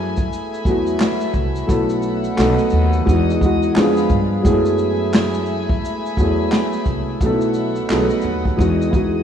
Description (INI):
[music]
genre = lo-fi hip hop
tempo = 87 BPM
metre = 4/4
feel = swing 61% on 16ths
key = F# dorian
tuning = A4 = 442 Hz
[part]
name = felt-muted upright piano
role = accompaniment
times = 0.0-9.2 s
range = E3 to A4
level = -18 LUFS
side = equal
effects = cassette tape, low-pass filter
[part]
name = warm studio string section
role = sustained chords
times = 0.0-9.2 s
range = A3 to D#6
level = -26 LUFS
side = left 1 dB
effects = low-pass filter
[part]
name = upright bass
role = bass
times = 0.0-9.2 s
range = B1 to G2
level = -22 LUFS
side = equal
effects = none
[part]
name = vintage brush drum kit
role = drums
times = 0.2-9.1 s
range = handclaps, hi-hat, kick drum, shaker, snare drum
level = -21 LUFS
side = equal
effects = none
[sound]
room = light reverb, small room ambience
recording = rough home demo mix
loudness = -15 LUFS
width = side -8 dB against mid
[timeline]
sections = 0.0-9.2 A section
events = none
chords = 0.0 F#m11; 1.7 B7sus4; 2.4 B7; 3.1 Emaj9; 3.8 Fdim7; 4.4 F#m11; 7.2 B7sus4; 7.9 B7; 8.6 Emaj9